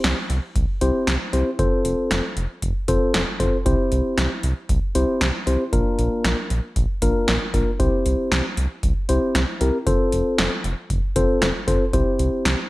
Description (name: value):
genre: synth-pop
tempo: 116 BPM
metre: 4/4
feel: straight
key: C mixolydian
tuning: A4 = 440 Hz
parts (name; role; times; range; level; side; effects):
- mellow tine electric piano; accompaniment; 0.0-12.6 s; Bb3 to C5; -22 LUFS; left 1 dB; none
- round analog bass; bass; 0.0-12.6 s; F1 to C2; -23 LUFS; equal; none
- electro analog drum machine; drums; 0.0-12.6 s; hi-hat, kick drum, snare drum; -23 LUFS; equal; gated reverb
room: light reverb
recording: none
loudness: -19 LUFS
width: side -19 dB against mid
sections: 0.0-12.7 A section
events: none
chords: 0.0 C; 1.6 F; 3.7 C; 5.7 Bb; 7.8 C; 9.9 F; 11.9 C